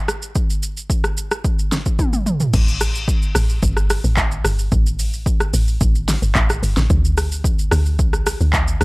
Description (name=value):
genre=amapiano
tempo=110 BPM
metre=4/4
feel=straight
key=unclear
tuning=A4 = 440 Hz
part: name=deep house drum kit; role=drums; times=0.1-8.8 s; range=crash cymbal, handclaps, hi-hat, kick drum, rim click, shaker, snare drum, toms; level=-18 LUFS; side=equal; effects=overdrive
part: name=deep log drum bass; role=bass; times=2.5-8.8 s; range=G1 to D2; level=-18 LUFS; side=equal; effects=none
room=digital ambience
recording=dry, gritty hardware recording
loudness=-16 LUFS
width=side -25 dB against mid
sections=0.0-2.5 A section; 2.5-8.8 B section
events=drum fill 2.0-2.5; drop 2.5-8.8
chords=none